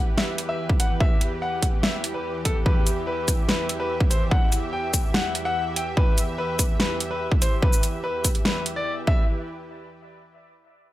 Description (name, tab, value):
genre	heavy wobble dubstep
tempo	145 BPM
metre	4/4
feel	half-time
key	E minor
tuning	A4 = 439 Hz
part	supersaw pad	sustained chords	0.0-9.3 s	E2 to E5	-31 LUFS	right 1 dB	sidechain pumping
part	bright concert grand piano	melody	0.2-9.2 s	A4 to G5	-28 LUFS	left 2 dB	dub echo
part	dubstep drum kit	drums	0.2-8.7 s	hi-hat, shaker, snare drum	-25 LUFS	equal	none
part	electronic kick drum	drums	0.7-9.2 s	none	-21 LUFS	equal	none
room	digital ambience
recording	none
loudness	-21 LUFS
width	side -15 dB against mid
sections	0.0-9.3 A section; 9.3-10.9 B section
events	none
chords	0.0 Em; 9.3 N.C.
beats	0.18 0.59 | 1.00 1.42 1.83 2.25 | 2.66 3.07 3.49 3.90 | 4.31 4.73 5.14 5.56 | 5.97 6.38 6.80 7.21 | 7.62 8.04 8.45 8.87